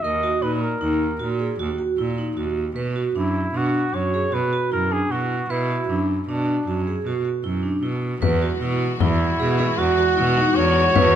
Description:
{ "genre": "contemporary instrumental, chamber music in an uneven meter", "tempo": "154 BPM", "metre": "7/4", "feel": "straight", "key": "E lydian", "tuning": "A4 = 440 Hz", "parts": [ { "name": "clear flugelhorn", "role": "melody", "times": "0.0-11.2 s", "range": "D4 to D#5", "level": "-23 LUFS", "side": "equal", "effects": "none" }, { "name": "vibraphone with medium hard mallets", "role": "arpeggios", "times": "0.0-11.1 s", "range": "D4 to B4", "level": "-24 LUFS", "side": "right 2 dB", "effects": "none" }, { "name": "bright cello", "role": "bass", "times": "0.0-11.2 s", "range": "D#2 to B2", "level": "-24 LUFS", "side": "right 2 dB", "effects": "none" }, { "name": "warm studio string section", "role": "sustained chords", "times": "8.2-11.2 s", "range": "E3 to F#4", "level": "-25 LUFS", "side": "left 4 dB", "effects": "none" }, { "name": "frame drum", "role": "percussion", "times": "8.2-11.1 s", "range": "none", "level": "-24 LUFS", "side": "left 7 dB", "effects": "none" } ], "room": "moderate recital hall reverb, RT60 1.5 s", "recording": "close, detailed microphones", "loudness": "-19 LUFS", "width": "side -9 dB against mid", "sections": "0.0-8.2 A section; 8.2-11.2 A section", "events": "none", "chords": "0.0 D#m; 2.8 Bm; 8.2 Eadd9", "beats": "| 0.04 0.42 0.81 1.20 1.59 1.98 2.37 | 2.76 3.15 3.54 3.94 4.33 4.72 5.11 | 5.50 5.89 6.28 6.67 7.06 7.45 7.84 | 8.23 8.62 9.01 9.40 9.79 10.18 10.57 | 10.96" }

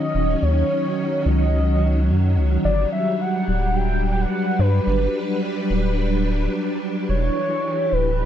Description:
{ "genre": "IDM", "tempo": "108 BPM", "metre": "4/4", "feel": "swing 62% on 16ths", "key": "unclear", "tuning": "A4 = 441 Hz", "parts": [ { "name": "warm velvety synth lead", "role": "melody", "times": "0.0-8.3 s", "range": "B4 to G5", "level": "-25 LUFS", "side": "equal", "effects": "chorus, tape echo" }, { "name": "soft string machine", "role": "sustained chords", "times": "0.0-8.3 s", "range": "D#3 to E5", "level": "-23 LUFS", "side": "equal", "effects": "ensemble chorus, vintage 12-bit sampler grit" }, { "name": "round analog bass", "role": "bass", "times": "0.1-8.3 s", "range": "D1 to G2", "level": "-20 LUFS", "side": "equal", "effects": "none" } ], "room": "light reverb, digital ambience", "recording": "none", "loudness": "-18 LUFS", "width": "side -10 dB against mid", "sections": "0.0-8.3 A section", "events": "none", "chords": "0.0 D#m7; 2.6 Gmaj7; 7.1 Em7", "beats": "| 0.42 0.98 1.54 2.09 | 2.65 3.20 3.76 4.31 | 4.87 5.42 5.98 6.54 | 7.09 7.65 8.20" }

